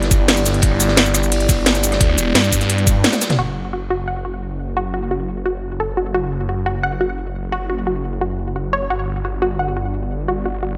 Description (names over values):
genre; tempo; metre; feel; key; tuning
dark technical drum and bass; 174 BPM; 4/4; straight; F# phrygian; A4 = 440 Hz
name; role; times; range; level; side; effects
dark analog pad; sustained chords; 0.0-10.8 s; A3 to D5; -28 LUFS; equal; chorus, sidechain pumping
phased detuned saw bass; bass; 0.0-10.8 s; E1 to G2; -24 LUFS; equal; phaser, tube saturation, sidechain pumping
crunchy breakbeat drum kit; drums; 0.0-3.4 s; hi-hat, ride cymbal, snare drum; -28 LUFS; equal; high-pass filter on cymbals, high-pass filter on hats, high-pass filter on snare, high-pass filter on room
drum and bass drum kit; drums; 0.0-10.7 s; hi-hat, rim click, shaker, snare drum, toms; -19 LUFS; equal; low-pass filter on hats, low-pass filter on snare, low-pass filter on perc, low-pass filter on toms, low-pass filter on room
electronic kick drum; drums; 0.1-2.9 s; none; -19 LUFS; equal; none
unison pluck; arpeggios; 3.4-10.7 s; F#4 to F#5; -25 LUFS; equal; cassette tape, sidechain pumping, tape echo
room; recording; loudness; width
light reverb, digital ambience; none; -19 LUFS; mono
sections
0.0-3.4 A section; 3.4-10.8 B section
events
drop 0.0-3.4; drum fill 3.0-3.4; band accent 3.0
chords
0.0 G6; 3.4 F#m7; 8.9 G6